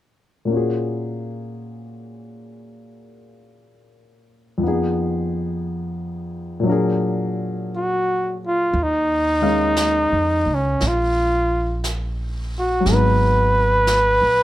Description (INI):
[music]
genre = jazz ballad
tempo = 58 BPM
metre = 4/4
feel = swing 66% on 8ths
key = Eb minor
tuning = A4 = 436 Hz
[part]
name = warm concert grand piano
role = accompaniment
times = 0.5-14.4 s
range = F2 to F5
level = -23 LUFS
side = left 2 dB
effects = none
[part]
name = warm flugelhorn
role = melody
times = 7.8-14.4 s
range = Db4 to Cb5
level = -18 LUFS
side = equal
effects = none
[part]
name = upright bass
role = bass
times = 8.7-14.4 s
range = Ab1 to F2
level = -22 LUFS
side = equal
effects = none
[part]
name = jazz brush drum kit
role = drums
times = 8.7-14.4 s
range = brushed snare drum, hi-hat, snare drum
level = -31 LUFS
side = right 1 dB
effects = none
[sound]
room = light reverb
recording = none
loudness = -18 LUFS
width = side -14 dB against mid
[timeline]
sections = 0.5-8.7 A section; 8.7-14.4 B section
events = none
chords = 0.5 Gbmaj9/Bb; 4.6 Fm7b5; 6.7 Bb7b13; 8.7 Eb9sus4; 12.9 Abm9